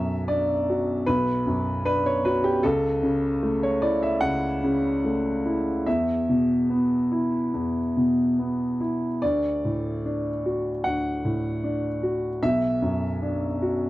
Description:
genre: neoclassical minimalist piano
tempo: 73 BPM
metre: 4/4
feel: uneven beats, rubato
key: D major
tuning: A4 = 441 Hz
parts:
  - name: warm grand piano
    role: solo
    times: 0.0-13.9 s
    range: B1 to F#5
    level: -22 LUFS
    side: equal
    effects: none
room: little or no reverb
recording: dry, close 1970s-style studio recording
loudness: -22 LUFS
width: side -16 dB against mid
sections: 0.0-13.9 A section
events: none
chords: 0.0 Bm; 2.6 A6/C#; 5.9 E5; 9.2 D; 12.4 Bm

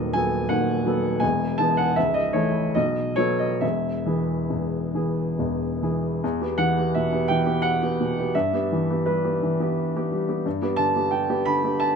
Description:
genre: classical, romantic character piece for solo piano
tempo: 66-89 BPM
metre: 3/4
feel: rubato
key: E major, E minor from 6.2 s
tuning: A4 = 435 Hz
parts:
  - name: warm upright piano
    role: solo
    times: 0.0-12.0 s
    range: C#1 to B5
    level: -21 LUFS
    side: equal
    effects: none
room: light reverb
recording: close, detailed microphones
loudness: -21 LUFS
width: side -6 dB against mid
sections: 0.0-6.2 A section; 6.2-12.0 B section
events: none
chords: 0.0 B7/D#; 1.2 E; 2.0 A/C#; 2.8 B7; 3.6 E; 6.2 Em; 8.3 Em/G; 10.5 G

